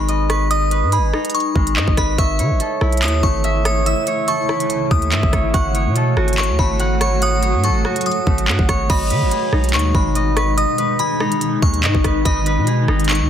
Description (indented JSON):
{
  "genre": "hip hop, drill",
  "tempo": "143 BPM",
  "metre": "4/4",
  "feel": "half-time",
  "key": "G# phrygian",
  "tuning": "A4 = 436 Hz",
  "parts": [
    { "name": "glassy synth bell", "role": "second line", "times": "0.0-13.3 s", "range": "B5 to E6", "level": "-23 LUFS", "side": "left 1 dB", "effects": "chorus, phaser, ping-pong delay" },
    { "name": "concert harp", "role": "arpeggios", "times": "0.0-13.3 s", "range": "G#3 to F#5", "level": "-21 LUFS", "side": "equal", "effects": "low-pass filter, ping-pong delay" },
    { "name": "long sustained 808-style bass", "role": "bass", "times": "0.0-13.3 s", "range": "G#1 to D#3", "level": "-19 LUFS", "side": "equal", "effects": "none" },
    { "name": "drill drum kit", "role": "drums", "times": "0.1-13.2 s", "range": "crash cymbal, handclaps, hi-hat, kick drum, rim click", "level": "-20 LUFS", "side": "equal", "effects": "none" },
    { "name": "granular cloud pad", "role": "sustained chords", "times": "3.0-13.3 s", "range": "B2 to F#4", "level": "-24 LUFS", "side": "equal", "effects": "built-in reverb" }
  ],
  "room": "light reverb",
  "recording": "dense, heavily limited modern master",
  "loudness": "-15 LUFS",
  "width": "side -9 dB against mid",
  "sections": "0.0-8.9 A section; 8.9-13.3 A section",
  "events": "none",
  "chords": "0.0 G#m; 2.2 A/G#; 5.5 F#m/G#; 8.9 G#m"
}